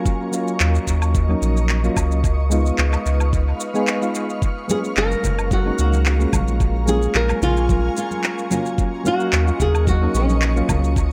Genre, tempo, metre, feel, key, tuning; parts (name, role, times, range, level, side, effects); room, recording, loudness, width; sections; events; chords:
sunset chillout; 110 BPM; 4/4; swing 54% on 16ths; A4 = 441 Hz
soft electric-piano-like synth keys; accompaniment; 0.0-11.0 s; F#3 to E#5; -27 LUFS; equal; chorus, tremolo, dub echo, shimmer reverb
shimmering ambient pad; sustained chords; 0.0-11.1 s; A#4 to C#6; -31 LUFS; equal; chorus, built-in reverb, shimmer reverb
electronic kick drum; drums; 0.1-11.1 s; -24 LUFS; equal
electronic shaker, handclaps and woodblock; drums; 0.1-11.1 s; -28 LUFS; equal; dub echo
warm sub bass; bass; 0.6-11.1 s; F#1 to D#2; -21 LUFS; equal; tube saturation
flamenco guitar; melody; 4.7-10.7 s; C#4 to A#4; -26 LUFS; equal; tape echo, shimmer reverb
congas; percussion; 4.7-10.8 s; -31 LUFS; equal; dub echo
moderate spring reverb, RT60 2.1 s; echo-heavy mix; -19 LUFS; mono
0.0-11.1 A section
0.0 D#m7; 2.2 C#9; 4.4 F#maj7; 6.3 A#m7; 8.5 D#m7